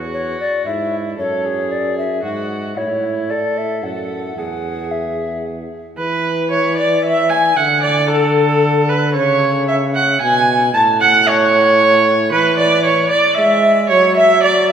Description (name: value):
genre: classical, renaissance-style consort dance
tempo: 113 BPM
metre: 3/4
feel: straight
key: E mixolydian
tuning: A4 = 440 Hz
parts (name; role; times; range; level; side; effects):
- rich viola; second line; 0.0-14.7 s; E4 to A5; -15 LUFS; right 2 dB; none
- mellow trombone; bass; 0.0-14.7 s; E2 to G#3; -21 LUFS; equal; none
- mellow hollow tenor recorder; melody; 0.1-14.7 s; A4 to A5; -21 LUFS; left 3 dB; none
room: wet church reverb, RT60 3.0 s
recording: recorded in a church or concert hall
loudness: -13 LUFS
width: side -8 dB against mid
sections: 0.0-6.0 A section; 6.0-14.7 A section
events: none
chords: 0.0 E; 1.2 F#5; 2.8 A; 4.4 E; 7.6 D5; 9.2 C#5; 10.7 A; 12.3 E; 13.9 Dmaj9/F#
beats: 0.13 0.65 | 1.18 1.71 2.24 | 2.77 3.30 3.83 | 4.37 4.91 5.45 | 5.98 6.51 7.05 | 7.58 8.11 8.64 | 9.16 9.69 10.22 | 10.75 11.28 11.80 | 12.33 12.86 13.38 | 13.91 14.44